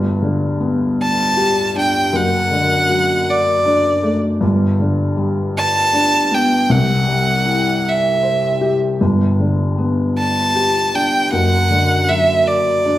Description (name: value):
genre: acoustic folk-pop ballad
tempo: 52 BPM (dotted quarters)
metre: 6/8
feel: straight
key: G major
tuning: A4 = 440 Hz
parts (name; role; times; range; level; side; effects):
- felt-muted upright piano; accompaniment; 0.0-13.0 s; F#1 to C5; -16 LUFS; left 1 dB; none
- clear violin; melody; 1.0-13.0 s; D5 to A5; -16 LUFS; right 1 dB; none
room: wet large studio reverb, RT60 1.0 s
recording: heard from further back in the room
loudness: -14 LUFS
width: side -14 dB against mid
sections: 0.0-13.0 A section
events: none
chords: 0.0 Gadd9; 2.1 D/F#; 4.4 Gadd9; 6.7 C; 9.0 Gadd9; 11.3 D/F#